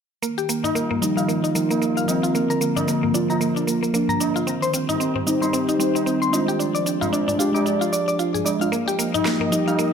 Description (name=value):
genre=organic downtempo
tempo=113 BPM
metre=4/4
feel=swing 58% on 16ths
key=unclear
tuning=A4 = 439 Hz
part: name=warm analog pad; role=sustained chords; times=0.2-9.9 s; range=D3 to Eb5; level=-25 LUFS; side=equal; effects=chorus
part: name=mallet-like synth pluck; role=arpeggios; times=0.2-9.9 s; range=Bb3 to D6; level=-24 LUFS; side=left 1 dB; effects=chorus, ping-pong delay
part: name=electronic cabasa and snare drum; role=drums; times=0.2-9.9 s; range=none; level=-30 LUFS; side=left 1 dB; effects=none
part: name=tabla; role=percussion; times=0.6-9.8 s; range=none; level=-31 LUFS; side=right 3 dB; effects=none
part: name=muted felt-like synth keys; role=accompaniment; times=1.0-9.9 s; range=F3 to Ab4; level=-24 LUFS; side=right 1 dB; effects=chorus, ping-pong delay
room=moderate recital hall reverb, RT60 1.6 s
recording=none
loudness=-19 LUFS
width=side -7 dB against mid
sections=0.2-9.9 A section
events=none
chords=0.2 Ebadd9; 2.3 Bb; 4.5 Cm; 6.6 Ddim; 8.7 Ebadd9